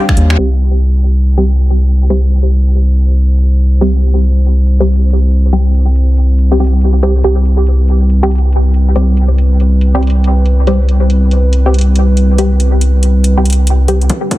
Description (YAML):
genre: deep dubstep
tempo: 140 BPM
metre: 4/4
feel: swing 62% on 16ths, half-time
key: unclear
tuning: A4 = 440 Hz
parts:
  - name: dark analog pad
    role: sustained chords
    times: 0.0-14.4 s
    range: G3 to F5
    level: -20 LUFS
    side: right 3 dB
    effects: chorus
  - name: electronic kick drum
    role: drums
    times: 0.1-0.2, 14.1-14.4 s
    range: none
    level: -14 LUFS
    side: equal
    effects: high-pass filter on kick, small room ambience, high-pass filter on room
  - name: garage drum kit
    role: drums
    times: 0.1-14.4 s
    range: finger snaps, hi-hat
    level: -21 LUFS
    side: equal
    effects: small room ambience
  - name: saturated sub bass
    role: bass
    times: 0.2-14.1 s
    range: C2 to Eb2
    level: -9 LUFS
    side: equal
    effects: tube saturation
  - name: filtered dub chord stab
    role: stabs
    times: 0.4-14.2 s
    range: G3 to G4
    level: -18 LUFS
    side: left 1 dB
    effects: phaser, dub echo
  - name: riser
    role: sound effects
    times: 14.3-14.4 s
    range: none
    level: -30 LUFS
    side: left 1 dB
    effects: none
room: digital ambience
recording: dense, heavily limited modern master, low-pass filter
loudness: -8 LUFS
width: side -17 dB against mid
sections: 0.4-14.1 A section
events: band accent 0.3; filter sweep on analog synth pad 0.4-14.1; filter sweep 0.4-14.1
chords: 0.4 C5